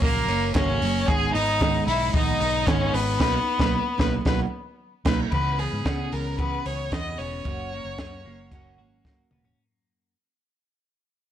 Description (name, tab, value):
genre	jangly indie pop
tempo	113 BPM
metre	4/4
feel	straight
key	unclear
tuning	A4 = 440 Hz
part	clear violin	melody	0.0-9.0 s	A#3 to D#5	-27 LUFS	left 2 dB	tape echo
part	clear trumpet	second line	0.0-5.2 s	A#4 to G#5	-32 LUFS	left 6 dB	none
part	picked steel-string acoustic guitar	accompaniment	0.0-9.6 s	F#2 to G#4	-30 LUFS	right 7 dB	none
part	twelve-string electric guitar	arpeggios	0.0-10.1 s	F#2 to G#4	-34 LUFS	left 5 dB	tape echo
part	vintage muted fingered electric bass	bass	0.0-9.5 s	E1 to C#3	-30 LUFS	equal	none
part	compact cocktail drum kit	drums	0.0-9.6 s	crash cymbal, hi-hat, kick drum, snare drum, toms	-26 LUFS	equal	none
part	group handclap	percussion	0.3-2.8 s	none	-41 LUFS	right 8 dB	none
room	light reverb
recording	blown-out, overdriven recording, overdrive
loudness	-22 LUFS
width	side -10 dB against mid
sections	0.0-5.3 A section; 5.3-9.6 B section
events	band accent 3.2-5.3; fade-out 5.3-9.6; drum fill 9.0-9.6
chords	0.0 F#; 1.1 G#m; 3.2 Bmaj7; 5.3 C#m7; 7.5 F#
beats	0.02 0.55 | 1.08 1.61 2.14 2.67 | 3.20 3.73 4.26 4.79 | 5.32 5.85 6.38 6.92 | 7.45 7.98 8.52 9.05